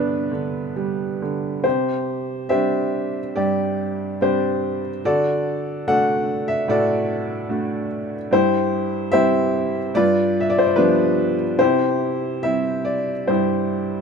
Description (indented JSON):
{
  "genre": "classical, lyrical solo piano",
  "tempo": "72 BPM",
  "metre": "4/4",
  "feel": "rubato",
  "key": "C major",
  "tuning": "A4 = 437 Hz",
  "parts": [
    { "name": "clear upright piano", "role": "solo", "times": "0.0-14.0 s", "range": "G2 to F#5", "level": "-18 LUFS", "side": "equal", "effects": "none" }
  ],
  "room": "light reverb",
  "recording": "close, detailed microphones",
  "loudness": "-18 LUFS",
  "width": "side -6 dB against mid",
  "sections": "0.0-1.7 A section; 1.7-14.0 B section",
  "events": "none",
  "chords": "0.0 G; 1.7 Csus2; 5.0 D; 8.3 C/G; 9.9 G7; 11.6 C"
}